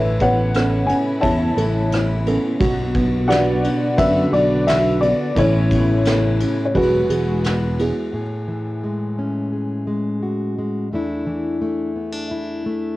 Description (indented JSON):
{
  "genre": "folk",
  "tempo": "87 BPM",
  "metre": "4/4",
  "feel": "straight",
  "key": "unclear",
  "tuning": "A4 = 440 Hz",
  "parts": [
    { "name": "dark upright piano", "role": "melody", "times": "0.0-8.1 s", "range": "E4 to A5", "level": "-21 LUFS", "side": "left 1 dB", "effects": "cassette tape, plate reverb" },
    { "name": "fingerpicked plugged-in steel-string acoustic guitar", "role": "accompaniment", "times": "0.0-13.0 s", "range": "E2 to G#4", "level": "-22 LUFS", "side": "left 1 dB", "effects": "cassette tape" },
    { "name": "rich studio string section", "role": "sustained chords", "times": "0.0-8.1 s", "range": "C#3 to F#4", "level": "-31 LUFS", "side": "equal", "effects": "none" },
    { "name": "felt-muted upright piano", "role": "arpeggios", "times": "0.0-8.2 s", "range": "E3 to A4", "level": "-23 LUFS", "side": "right 2 dB", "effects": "cassette tape" },
    { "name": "fretless electric bass", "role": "bass", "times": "0.0-7.9 s", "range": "E1 to F#2", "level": "-21 LUFS", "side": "equal", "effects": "ensemble chorus" },
    { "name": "soft brush drum kit", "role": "drums", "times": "0.2-8.0 s", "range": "kick drum, ride cymbal, rim click, snare drum", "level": "-26 LUFS", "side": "equal", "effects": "cassette tape" }
  ],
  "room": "moderate small room reverb, RT60 0.6 s",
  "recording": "home recording on cassette",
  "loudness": "-17 LUFS",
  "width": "side -17 dB against mid",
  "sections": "0.0-8.1 A section; 8.1-13.0 B section",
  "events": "none",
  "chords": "0.0 Aadd9; 2.6 Bm; 5.4 Aadd9; 6.7 Eadd9; 8.1 Amaj7; 10.9 E7sus4"
}